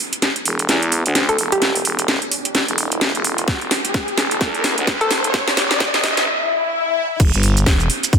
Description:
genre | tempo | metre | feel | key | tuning
bass house | 129 BPM | 4/4 | swing 59% on 16ths | E minor | A4 = 440 Hz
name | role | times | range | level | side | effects
riser and swell | sound effects | 1.1-7.2 s | none | -23 LUFS | left 2 dB | none
house drum kit | drums | 0.1-8.2 s | crash cymbal, hi-hat, shaker, snare drum | -18 LUFS | right 1 dB | soft clipping on snare
growling FM bass | bass | 0.5-7.9 s | E1 to E2 | -21 LUFS | equal | overdrive, sidechain pumping, high-pass filter
hollow square pluck | melody | 1.3-2.2, 5.0-5.2 s | G4 to A4 | -23 LUFS | equal | chorus, tape echo
electronic kick drum | drums | 3.5-8.2 s | none | -16 LUFS | equal | overdrive
room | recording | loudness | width
moderate plate reverb, RT60 2.1 s | dense, heavily limited modern master, high-pass filter | -15 LUFS | side -7 dB against mid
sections
0.0-7.2 A section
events
build-up 0.0-7.2; drum fill 0.0-6.3; riser 1.1-6.3; break 6.3-7.2; swell 6.3-7.2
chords
0.0 Em

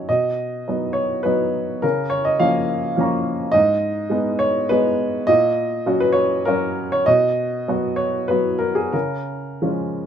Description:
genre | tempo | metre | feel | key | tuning
neoclassical minimalist piano | 87-106 BPM | 3/4 | rubato | unclear | A4 = 440 Hz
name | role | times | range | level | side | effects
warm upright piano | solo | 0.0-10.1 s | G#2 to C#6 | -18 LUFS | equal | none
room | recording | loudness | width
light reverb | minimal, uncompressed stereo recording | -18 LUFS | side -8 dB against mid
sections
0.0-10.1 A section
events
none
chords
0.1 B; 1.8 C#6; 3.5 G#m; 5.3 F#6/A#; 7.1 B; 8.9 C#6

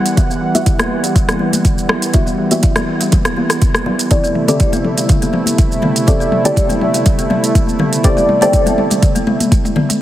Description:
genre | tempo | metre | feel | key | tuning
afro house | 122 BPM | 4/4 | straight | unclear | A4 = 440 Hz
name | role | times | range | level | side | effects
warm analog pad | sustained chords | 0.0-10.0 s | C3 to F#5 | -20 LUFS | equal | chorus, sidechain pumping
kalimba | arpeggios | 0.0-9.9 s | D3 to E4 | -20 LUFS | right 1 dB | sidechain pumping, low-pass filter, digital delay
deep mellow chord stab | stabs | 0.0-10.0 s | B3 to E5 | -18 LUFS | left 1 dB | chorus, sidechain pumping, digital delay
afro-pop drum kit | drums | 0.1-10.0 s | hi-hat, rim click, shaker, toms | -19 LUFS | left 1 dB | none
warm 808-style bass | bass | 0.2-10.0 s | E1 to E2 | -36 LUFS | equal | none
electronic kick drum | drums | 0.2-9.6 s | none | -14 LUFS | equal | none
congas | percussion | 0.2-9.9 s | none | -23 LUFS | left 3 dB | none
room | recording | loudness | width
moderate plate reverb, RT60 2.7 s | heavily compressed radio sound, multiband compression | -11 LUFS | side -13 dB against mid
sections
0.0-10.0 A section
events
build-up 0.0-10.0; drum fill 0.0-10.0; filter sweep on kalimba 0.0-10.0; filter sweep on synth stab 0.0-10.0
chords
0.0 Emadd9; 4.1 C6

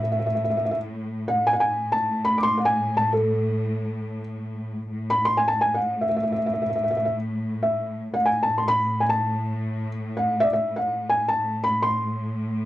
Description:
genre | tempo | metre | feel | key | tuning
Persian modal ensemble | free time | none | none | A avaz esfahan | A4 = 440 Hz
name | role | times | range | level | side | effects
felt-muted upright piano | melody | 0.0-12.7 s | A4 to D6 | -22 LUFS | equal | none
rich symphonic cello section | drone | 0.0-12.7 s | A2 | -28 LUFS | equal | none
room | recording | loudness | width
light reverb | dry, close 1970s-style studio recording | -21 LUFS | side -15 dB against mid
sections
0.0-4.9 A section; 4.9-12.7 A section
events
none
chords
none

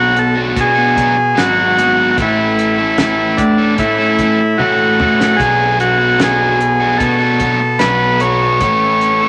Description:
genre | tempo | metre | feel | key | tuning
psychedelic rock | 75 BPM | 4/4 | straight | B dorian | A4 = 437 Hz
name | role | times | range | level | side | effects
combo organ | melody | 0.0-9.3 s | D4 to C#5 | -15 LUFS | equal | spring reverb
crunchy overdriven guitar | riff | 0.0-9.3 s | A2 to A4 | -19 LUFS | equal | none
fuzz picked electric bass | bass | 0.0-9.3 s | G#1 to B2 | -22 LUFS | equal | overdrive
cloth-damped thuddy drum kit | drums | 0.2-9.2 s | hi-hat, kick drum, snare drum, toms | -22 LUFS | equal | none
room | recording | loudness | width
moderate small room reverb, RT60 0.5 s | none | -13 LUFS | mono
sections
0.0-9.3 A section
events
drum fill 4.6-5.4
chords
0.0 Bm; 2.2 A; 5.4 Bm; 8.6 A

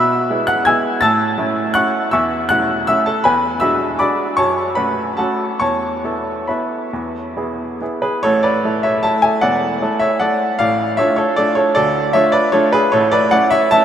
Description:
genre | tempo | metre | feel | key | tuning
classical, piano waltz | 130-175 BPM | 3/4 | rubato | A major | A4 = 438 Hz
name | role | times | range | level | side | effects
bright upright piano | solo | 0.0-13.8 s | E1 to A6 | -14 LUFS | equal | none
room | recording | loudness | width
wet huge ambient reverb, RT60 8.1 s | in a vast, echoing space | -14 LUFS | side -9 dB against mid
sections
0.0-8.2 A section; 8.2-13.8 B section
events
none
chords
0.0 E; 1.0 A; 3.2 E9; 4.4 F#m; 5.6 Esus4; 6.9 E; 8.2 A; 10.6 Dm/A; 12.9 A

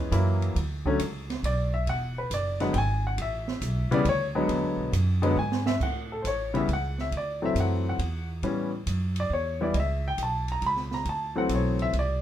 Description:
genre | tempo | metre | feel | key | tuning
jazz piano trio | 137 BPM | 3/4 | swing 68% on 8ths | unclear | A4 = 439 Hz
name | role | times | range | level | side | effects
clear grand piano | melody | 0.0-12.2 s | C#3 to B5 | -28 LUFS | left 2 dB | none
upright bass | bass | 0.0-12.2 s | E1 to A2 | -28 LUFS | right 1 dB | none
open jazz drum kit | drums | 0.1-12.1 s | crash cymbal, hi-hat, kick drum, ride cymbal, snare drum | -36 LUFS | right 3 dB | none
room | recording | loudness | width
light reverb | minimal, uncompressed stereo recording | -25 LUFS | side -11 dB against mid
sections
0.0-5.8 A section; 5.8-12.2 A section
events
grand piano solo 0.0-12.2; drum fill 5.4-5.8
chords
0.1 F#7; 0.6 Bm; 1.9 E9; 3.2 Aadd9; 4.5 E9; 5.8 A; 7.1 D9; 8.4 Aadd9; 11.1 D9

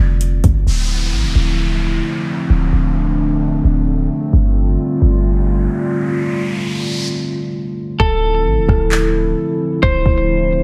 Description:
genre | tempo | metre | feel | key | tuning
hip hop, atmospheric cloud-rap | 131 BPM | 4/4 | half-time | D minor | A4 = 442 Hz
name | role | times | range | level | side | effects
dark analog pad | sustained chords | 0.0-10.6 s | D3 to F4 | -22 LUFS | equal | subtle chorus, sidechain pumping
clean 808-style bass | bass | 0.0-10.6 s | D1 to A1 | -18 LUFS | equal | none
smooth R&B drum kit | drums | 0.2-0.5, 8.0-10.2 s | handclaps, hi-hat, kick drum, rim click | -19 LUFS | equal | none
downlifter and riser | sound effects | 0.7-7.1 s | none | -29 LUFS | equal | none
clean electric guitar | melody | 8.0-10.6 s | A4 to C5 | -20 LUFS | equal | low-pass filter, delay
room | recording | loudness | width
digital ambience | none | -17 LUFS | mono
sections
0.7-8.0 A section; 8.0-10.6 B section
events
riser 5.3-8.0; break 6.2-8.0; hi-hats muted 8.0-10.6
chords
0.0 G9sus4; 0.7 Dm9; 4.3 G9sus4; 8.0 Dm9

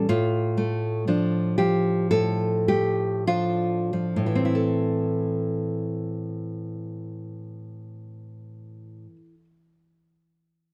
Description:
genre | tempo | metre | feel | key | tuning
romantic piece for solo classical guitar | 44-62 BPM | 4/4 | rubato | A minor | A4 = 440 Hz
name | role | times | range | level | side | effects
nylon-string guitar | solo | 0.0-9.4 s | A2 to A4 | -26 LUFS | equal | none
room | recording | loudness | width
light reverb | dark, warm production | -25 LUFS | mono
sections
0.0-4.5 A section; 4.5-9.0 B section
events
slowing down 0.0-4.5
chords
0.1 Dm/A; 4.5 Am

